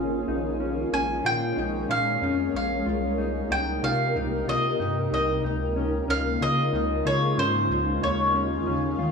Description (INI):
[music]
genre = dream pop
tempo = 93 BPM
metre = 4/4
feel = straight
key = Db lydian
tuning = A4 = 440 Hz
[part]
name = shimmering ambient pad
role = sustained chords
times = 0.0-9.1 s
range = C3 to Bb4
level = -28 LUFS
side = equal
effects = chorus, built-in reverb, phaser
[part]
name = mellow electric guitar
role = arpeggios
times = 0.0-9.1 s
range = Db4 to F4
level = -31 LUFS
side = left 3 dB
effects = analog chorus, tape echo
[part]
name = round analog bass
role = bass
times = 0.0-9.1 s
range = Ab1 to Eb3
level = -30 LUFS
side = equal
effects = transformer saturation
[part]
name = mandolin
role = melody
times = 0.9-9.1 s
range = C5 to Ab5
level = -26 LUFS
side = equal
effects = tape echo
[sound]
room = light reverb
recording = dry, gritty hardware recording, small room reverb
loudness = -23 LUFS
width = side -5 dB against mid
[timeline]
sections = 0.0-9.1 A section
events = none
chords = 0.3 Bbm7; 2.9 Cm7; 5.4 Dbmaj7; 8.0 Eb7sus4